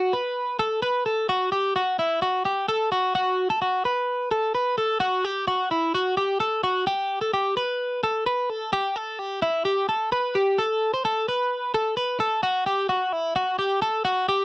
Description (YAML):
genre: indie pop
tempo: 129 BPM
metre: 4/4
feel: straight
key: E minor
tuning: A4 = 440 Hz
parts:
  - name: twelve-string electric guitar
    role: solo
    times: 0.0-14.4 s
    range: E4 to C5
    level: -22 LUFS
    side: equal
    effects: none
room: light reverb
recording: dry, close 1970s-style studio recording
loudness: -22 LUFS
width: side -22 dB against mid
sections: 0.0-6.9 A section; 6.9-14.3 B section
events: none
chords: none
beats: 0.36 0.82 | 1.29 1.75 2.22 2.68 | 3.15 3.61 4.08 4.54 | 5.01 5.47 5.94 6.40 | 6.87 7.33 7.79 8.26 | 8.72 9.19 9.65 10.11 | 10.58 11.04 11.50 11.97 | 12.43 12.89 13.36 13.82 | 14.28